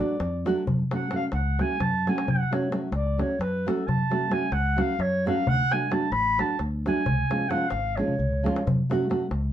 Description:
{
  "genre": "balkan folk, Balkan wedding band",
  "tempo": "263 BPM (eighths)",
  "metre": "7/8",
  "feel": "straight",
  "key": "F# harmonic minor",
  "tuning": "A4 = 440 Hz",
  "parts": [
    { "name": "dark clarinet", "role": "melody", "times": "0.0-8.7 s", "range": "A4 to B5", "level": "-27 LUFS", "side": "right 1 dB", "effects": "none" },
    { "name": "nylon-string guitar", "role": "accompaniment", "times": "0.0-9.3 s", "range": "E#3 to F#4", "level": "-27 LUFS", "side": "right 2 dB", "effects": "none" },
    { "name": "darbuka", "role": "percussion", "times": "0.1-9.5 s", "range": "none", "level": "-29 LUFS", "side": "left 1 dB", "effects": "none" },
    { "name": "fingered electric bass", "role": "bass", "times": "0.2-9.5 s", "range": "G#1 to F#2", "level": "-28 LUFS", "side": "equal", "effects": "none" }
  ],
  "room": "wet small room ambience, RT60 0.5 s",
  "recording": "band playing live in one room",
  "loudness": "-23 LUFS",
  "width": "side -11 dB against mid",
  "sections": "0.0-9.5 A section",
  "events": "clarinet solo 0.0-9.5; drum fill 1.9-2.3, 8.1-8.7",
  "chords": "0.0 D; 0.7 F#m; 5.5 D; 7.1 C#; 8.7 F#m"
}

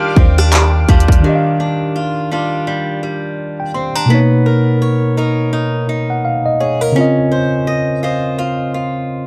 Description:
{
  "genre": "contemporary R&B",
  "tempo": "84 BPM",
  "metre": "4/4",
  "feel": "swing 58% on 16ths",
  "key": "Eb major",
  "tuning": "A4 = 440 Hz",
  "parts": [
    { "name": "tine electric piano", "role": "accompaniment", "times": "0.0-9.3 s", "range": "B2 to C6", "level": "-18 LUFS", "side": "equal", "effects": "none" },
    { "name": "lush unison pad", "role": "sustained chords", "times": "0.0-1.2 s", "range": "G4 to D6", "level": "-26 LUFS", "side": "equal", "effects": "chorus, sidechain pumping" },
    { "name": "picked swing-style acoustic guitar", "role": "arpeggios", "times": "0.0-9.3 s", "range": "Eb3 to Eb5", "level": "-22 LUFS", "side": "equal", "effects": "none" },
    { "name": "clean 808-style bass", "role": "bass", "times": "0.2-1.2 s", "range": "Eb2", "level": "-14 LUFS", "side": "equal", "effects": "none" },
    { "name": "trap drum kit", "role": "drums", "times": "0.2-1.2 s", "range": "handclaps, hi-hat, kick drum, rim click", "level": "-13 LUFS", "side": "equal", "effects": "overdrive" }
  ],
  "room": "little or no reverb",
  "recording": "dry, gritty hardware recording",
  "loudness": "-15 LUFS",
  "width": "mono",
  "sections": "0.0-1.2 A section; 1.2-9.3 B section",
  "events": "none",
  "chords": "0.0 Ebmaj9; 4.1 Bmaj9; 7.0 Dbmaj9"
}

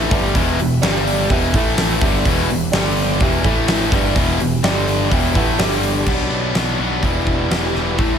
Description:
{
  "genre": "classic rock",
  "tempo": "126 BPM",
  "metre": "4/4",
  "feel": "straight",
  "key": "E minor",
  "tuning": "A4 = 441 Hz",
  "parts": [
    { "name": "string machine, full ensemble", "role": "sustained chords", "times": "0.0-8.2 s", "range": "D4 to G5", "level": "-28 LUFS", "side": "left 1 dB", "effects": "ensemble chorus" },
    { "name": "distorted electric guitar", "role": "riff", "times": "0.0-8.2 s", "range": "E2 to B3", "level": "-21 LUFS", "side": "left 12 dB", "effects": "overdrive" },
    { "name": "overdriven electric guitar", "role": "riff", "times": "0.0-8.2 s", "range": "E2 to E4", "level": "-22 LUFS", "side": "right 10 dB", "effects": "none" },
    { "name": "growling picked electric bass", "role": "bass", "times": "0.0-8.2 s", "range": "E1 to B1", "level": "-23 LUFS", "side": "equal", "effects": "overdrive" },
    { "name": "dark upright piano", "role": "accompaniment", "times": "0.1-6.0 s", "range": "E4 to G5", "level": "-27 LUFS", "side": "right 5 dB", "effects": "none" },
    { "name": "huge arena drum kit", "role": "drums", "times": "0.1-8.1 s", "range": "crash cymbal, hi-hat, kick drum, snare drum", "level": "-20 LUFS", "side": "equal", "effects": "none" }
  ],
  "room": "light reverb, studio ambience",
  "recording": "none",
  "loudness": "-15 LUFS",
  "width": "side -8 dB against mid",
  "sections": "0.0-6.1 A section; 6.1-8.2 B section",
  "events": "none",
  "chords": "0.1 Em; 0.8 G5; 1.3 Em; 1.5 A5; 2.0 Em; 2.7 G5; 3.2 Em; 3.5 A5; 3.9 Em; 4.6 G5; 5.1 Em; 5.6 G5; 6.1 Bm; 7.0 Em"
}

